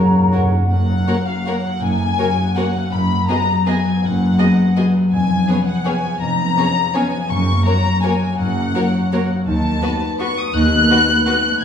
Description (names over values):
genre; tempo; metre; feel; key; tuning
classical, orchestral ballroom waltz; 165 BPM; 3/4; uneven beats, rubato; F# major; A4 = 440 Hz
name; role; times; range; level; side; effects
clear clarinet; second line; 0.0-0.5 s; A#4; -32 LUFS; left 6 dB; none
mellow hollow concert flute; second line; 0.0-0.7 s; F#5 to A#5; -23 LUFS; right 1 dB; none
mellow oboe; second line; 0.0-0.5 s; C#5; -37 LUFS; right 4 dB; none
mellow bassoon; accompaniment; 0.0-0.5 s; C#3; -31 LUFS; right 1 dB; none
dark French horn section; sustained chords; 0.0-0.5 s; F#3; -19 LUFS; equal; none
concert harp; arpeggios; 0.0-11.6 s; E#2 to F#5; -20 LUFS; left 2 dB; none
timpani; percussion; 0.0-0.7, 11.6 s; F#2; -20 LUFS; equal; none
dark chamber violin section; melody; 0.3-11.6 s; C#5 to F#6; -20 LUFS; left 3 dB; none
warm chamber violin section; second line; 0.3-11.3 s; F#4 to D#5; -27 LUFS; left 2 dB; none
warm chamber viola section; accompaniment; 0.3-11.3 s; A#3 to F#4; -26 LUFS; right 1 dB; none
dark chamber cello section; bass; 0.7-11.6 s; D#2 to F#2; -24 LUFS; right 2 dB; none
dark chamber double bass section; bass; 0.7-11.6 s; E#1 to D#2; -23 LUFS; right 1 dB; none
room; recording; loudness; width
wet recital hall reverb, RT60 1.4 s; recorded in a church or concert hall, small room ambience; -15 LUFS; side -8 dB against mid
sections
0.7-11.6 A section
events
timpani fill 0.0-0.7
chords
0.0 F#; 2.9 G#m7/F#; 5.1 C#7/E#; 7.3 F#; 9.5 B7/D#